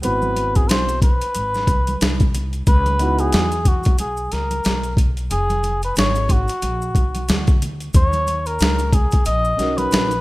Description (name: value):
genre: hip hop, jazz-hop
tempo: 91 BPM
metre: 4/4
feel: swing 58% on 16ths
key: G# minor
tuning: A4 = 441 Hz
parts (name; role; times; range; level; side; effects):
- trumpet with cup mute; melody; 0.0-10.2 s; F#4 to D#5; -22 LUFS; equal; none
- dark baby grand piano; accompaniment; 0.0-3.4, 9.6-10.1 s; B3 to A#4; -25 LUFS; right 1 dB; none
- upright bass; bass; 0.0-10.2 s; F1 to E2; -22 LUFS; equal; none
- boom bap sampler-style drum kit; drums; 0.0-10.2 s; hi-hat, kick drum, snare drum; -18 LUFS; equal; none
- maracas and congas; percussion; 0.0-10.2 s; none; -33 LUFS; right 2 dB; none
room: light reverb, studio reverb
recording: rough home demo mix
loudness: -16 LUFS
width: side -19 dB against mid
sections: 0.0-10.2 A section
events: none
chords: 0.0 G#7alt; 2.7 C#m11; 5.3 Fm; 6.6 A#aug; 7.9 D#m7